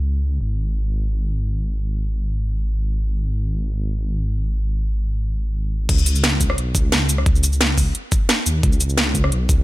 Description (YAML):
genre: liquid drum and bass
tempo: 175 BPM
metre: 4/4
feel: swing 53% on 16ths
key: unclear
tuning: A4 = 440 Hz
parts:
  - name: dark detuned saw bass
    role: bass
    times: 0.0-9.6 s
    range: G#1 to D#2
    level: -20 LUFS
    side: equal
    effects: none
  - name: drum and bass drum kit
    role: drums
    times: 5.9-9.6 s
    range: cabasa, crash cymbal, hi-hat, rim click, snare drum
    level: -20 LUFS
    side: equal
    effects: none
  - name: electronic kick drum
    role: drums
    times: 5.9-9.6 s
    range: none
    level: -19 LUFS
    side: equal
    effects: none
room: little or no reverb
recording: none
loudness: -18 LUFS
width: side -17 dB against mid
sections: 0.0-5.9 A section; 5.9-9.6 B section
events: drop 5.9-9.6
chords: none